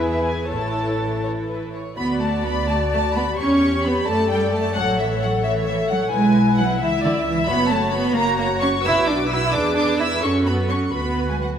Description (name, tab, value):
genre	quick classical-period movement for string orchestra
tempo	87 BPM (dotted quarters)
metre	6/8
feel	rubato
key	D major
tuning	A4 = 441 Hz
part	dark studio violin section	melody	0.0-11.5 s	D5 to E6	-28 LUFS	left 2 dB	none
part	warm chamber violin section	second line	0.0-11.5 s	G#4 to E6	-26 LUFS	left 2 dB	none
part	warm chamber viola section	accompaniment	0.0-11.6 s	E3 to E5	-24 LUFS	equal	none
part	dark chamber cello section	bass	0.0-11.6 s	D3 to B4	-22 LUFS	right 1 dB	none
part	dark chamber double bass section	bass	0.0-11.6 s	F#1 to F#2	-26 LUFS	right 2 dB	none
room	moderate scoring stage reverb, RT60 1.5 s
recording	none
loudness	-18 LUFS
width	side -8 dB against mid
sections	0.0-2.0 A section; 2.0-11.6 B section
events	none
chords	0.5 A; 2.0 D; 3.4 C#dim/E; 4.1 D/F#; 4.8 A; 6.1 Eadd9/B; 6.8 C#m; 7.5 F#m; 8.2 F#; 8.8 Bm; 9.5 E7; 10.2 F#m; 10.9 Bm/D